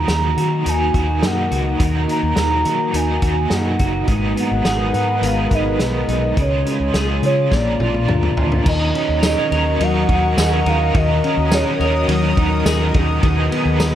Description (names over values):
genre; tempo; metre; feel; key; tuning
dream pop; 105 BPM; 4/4; straight; Eb minor; A4 = 439 Hz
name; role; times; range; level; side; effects
warbly nostalgic lead; melody; 0.0-12.1 s; Db5 to Bb5; -22 LUFS; right 1 dB; chorus, tremolo, analog delay
overdriven electric guitar; accompaniment; 0.0-13.9 s; Ab2 to Bb4; -24 LUFS; right 3 dB; tremolo, ensemble chorus, analog delay
lush unison pad; sustained chords; 0.0-13.9 s; Ab3 to Eb6; -25 LUFS; left 1 dB; chorus
clean electric guitar; arpeggios; 0.0-13.9 s; Ab2 to Bb4; -23 LUFS; left 2 dB; lush chorus, analog delay
vintage muted fingered electric bass; bass; 0.0-13.9 s; Gb1 to Eb3; -20 LUFS; equal; none
loose indie drum kit; drums; 0.1-13.9 s; crash cymbal, hi-hat, kick drum, ride cymbal, snare drum, tambourine, toms; -22 LUFS; equal; analog delay
room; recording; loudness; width
moderate spring reverb, RT60 1.6 s; echo-heavy mix; -15 LUFS; side -11 dB against mid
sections
0.0-8.7 A section; 8.7-13.9 B section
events
drum fill 7.5-8.7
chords
0.0 Ebm; 4.1 Abm7; 6.4 Db; 7.5 Bb; 8.7 Ebm7; 13.2 B6/D#